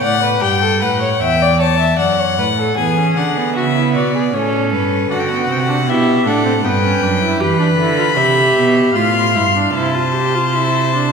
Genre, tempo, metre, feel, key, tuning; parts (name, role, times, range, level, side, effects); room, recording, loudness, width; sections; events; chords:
classical, baroque-style fugue for string quartet; 77 BPM; 3/4; straight; A4 = 439 Hz
rich violin; melody; 0.0-11.1 s; B4 to C6; -18 LUFS; left 6 dB
dark violin; second line; 0.0-11.1 s; E4 to F5; -18 LUFS; left 2 dB
rich cello; bass; 0.0-11.1 s; E2 to E3; -18 LUFS; right 3 dB
warm viola; accompaniment; 2.8-11.1 s; B3 to G4; -19 LUFS; right 3 dB
wet scoring stage reverb, RT60 1.9 s; minimal, uncompressed stereo recording; -13 LUFS; side -6 dB against mid
0.0-2.8 A section; 2.8-11.1 B section
0.4 A7/G; 2.0 D/F#; 2.8 E7; 4.3 A; 5.1 D7; 6.6 G; 7.4 Em; 8.9 F/A; 9.7 Gsus4/C